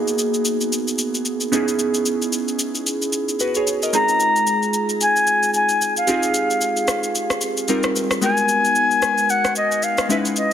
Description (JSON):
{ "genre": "amapiano", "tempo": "112 BPM", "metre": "4/4", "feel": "swing 58% on 16ths", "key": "unclear", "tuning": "A4 = 443 Hz", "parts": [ { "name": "glassy digital keys", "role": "accompaniment", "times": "0.0-10.5 s", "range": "G3 to Eb5", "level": "-21 LUFS", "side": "right 1 dB", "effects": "chorus, low-pass filter" }, { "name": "electronic shaker and rim click", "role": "drums", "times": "0.1-10.5 s", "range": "none", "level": "-24 LUFS", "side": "left 1 dB", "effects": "none" }, { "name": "concert flute", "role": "melody", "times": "3.9-10.5 s", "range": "Eb5 to Bb5", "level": "-18 LUFS", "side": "left 1 dB", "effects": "low-pass filter, tape echo" } ], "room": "light reverb, digital ambience", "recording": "heavily compressed radio sound, multiband compression", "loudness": "-17 LUFS", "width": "side -9 dB against mid", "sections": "0.0-10.5 A section", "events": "filter sweep 0.0-10.5", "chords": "0.0 Abm9; 1.5 Dbm9; 3.9 Fm9; 8.2 Abm9" }